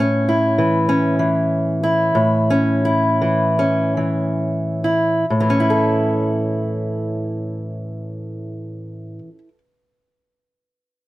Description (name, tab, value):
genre	folk, solo fingerstyle acoustic guitar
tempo	62-101 BPM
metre	4/4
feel	rubato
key	A major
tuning	A4 = 439 Hz
part	fingerpicked acoustic archtop guitar	solo	0.0-9.6 s	A2 to A4	-17 LUFS	equal	none
room	light reverb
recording	close, detailed microphones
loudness	-16 LUFS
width	side -17 dB against mid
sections	0.0-5.3 A section; 5.3-9.1 B section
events	slowing down 0.0-5.3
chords	0.0 A